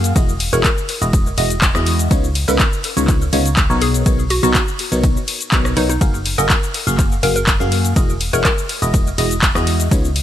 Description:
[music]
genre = piano house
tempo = 123 BPM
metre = 4/4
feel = straight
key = unclear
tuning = A4 = 440 Hz
[part]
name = barking FM electric piano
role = riff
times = 0.0-10.1 s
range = B2 to E#5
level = -21 LUFS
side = equal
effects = phaser, sidechain pumping
[part]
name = solid FM bass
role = bass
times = 0.0-10.2 s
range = E1 to F#2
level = -19 LUFS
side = equal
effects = sidechain pumping
[part]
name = punchy analog drum machine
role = drums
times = 0.0-10.2 s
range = handclaps, hi-hat, ride cymbal, rim click, shaker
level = -20 LUFS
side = left 1 dB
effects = overdrive
[part]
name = electronic kick drum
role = drums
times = 0.2-10.0 s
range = none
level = -17 LUFS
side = equal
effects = overdrive
[part]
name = hollow square pluck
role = melody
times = 0.5-8.5 s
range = D#4 to A#4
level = -25 LUFS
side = equal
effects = chorus, ping-pong delay
[sound]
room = little or no reverb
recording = lossy compression artefacts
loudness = -14 LUFS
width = side -11 dB against mid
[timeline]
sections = 0.0-10.2 A section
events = none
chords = 0.2 Emaj9; 2.1 C#9; 3.8 Bmaj9; 6.0 F#maj9; 8.0 Emaj9

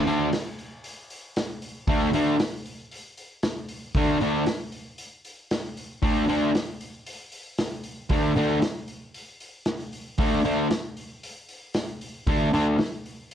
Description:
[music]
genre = garage rock duo or trio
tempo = 115 BPM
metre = 4/4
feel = straight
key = unclear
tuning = A4 = 444 Hz
[part]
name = fuzz guitar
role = riff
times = 0.0-12.8 s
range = D3 to D4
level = -22 LUFS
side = equal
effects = distortion
[part]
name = vintage drum kit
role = drums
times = 0.1-13.3 s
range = hi-hat, kick drum, snare drum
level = -30 LUFS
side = equal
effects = none
[sound]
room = moderate studio reverb, RT60 0.6 s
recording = cassette tape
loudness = -23 LUFS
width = side -9 dB against mid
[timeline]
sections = 0.0-13.3 A section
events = none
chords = 0.0 D5

